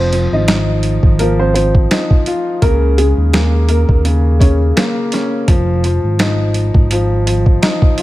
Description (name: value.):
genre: hip hop, boom-bap hip-hop.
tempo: 84 BPM.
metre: 4/4.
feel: swing 55% on 16ths.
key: F minor.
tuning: A4 = 440 Hz.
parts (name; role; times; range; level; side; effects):
warm upright piano; melody; 0.0-4.6 s; Ab3 to Eb5; -20 LUFS; right 1 dB; high-pass filter, low-pass filter, digital delay.
warm baby grand piano; accompaniment; 0.0-8.0 s; Db3 to F4; -18 LUFS; left 1 dB; cassette tape, high-pass filter, low-pass filter.
smooth synth bass; bass; 0.0-7.6 s; F1 to Eb2; -14 LUFS; equal; none.
boom bap sampler-style drum kit; drums; 0.1-8.0 s; hi-hat, kick drum, snare drum; -14 LUFS; equal; none.
room: studio ambience.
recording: none.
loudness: -11 LUFS.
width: side -16 dB against mid.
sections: 0.0-8.0 A section.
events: none.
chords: 0.0 Fm7; 2.6 Db5; 5.5 Fm7.